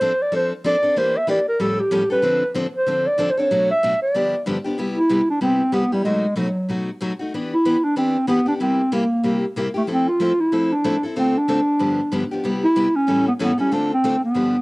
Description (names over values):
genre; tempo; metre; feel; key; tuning
jazz; 188 BPM; 4/4; swing 59% on 8ths; C major from 4.8 s; A4 = 440 Hz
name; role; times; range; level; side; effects
breathy clarinet; melody; 0.0-14.6 s; F#3 to E5; -18 LUFS; equal; cassette tape
picked steel-string acoustic guitar; accompaniment; 0.0-14.6 s; G2 to A4; -23 LUFS; left 1 dB; cassette tape
room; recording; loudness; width
moderate small room reverb, RT60 0.5 s; home recording on cassette; -17 LUFS; side -24 dB against mid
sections
0.0-4.8 A section; 4.8-14.6 B section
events
none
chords
0.0 F6; 1.0 Em7b5; 1.6 Aaug7; 2.2 Dm7; 3.5 Bm7; 4.1 G7; 4.8 Cmaj7; 6.0 B7; 7.3 Em7; 8.6 C7; 9.9 Fmaj7; 11.2 Dm7; 11.8 G7; 12.4 Cmaj7; 13.1 A7; 13.7 Dm7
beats
0.01 0.32 0.64 | 0.96 1.28 1.59 1.91 | 2.23 2.55 2.87 3.18 | 3.50 3.82 4.14 4.46 | 4.77 5.09 5.41 5.73 | 6.05 6.37 6.69 7.01 | 7.33 7.65 7.97 8.29 | 8.61 8.93 9.24 9.56 | 9.88 10.20 10.52 10.84 | 11.16 11.48 11.80 12.12 | 12.44 12.76 13.08 13.40 | 13.72 14.04 14.36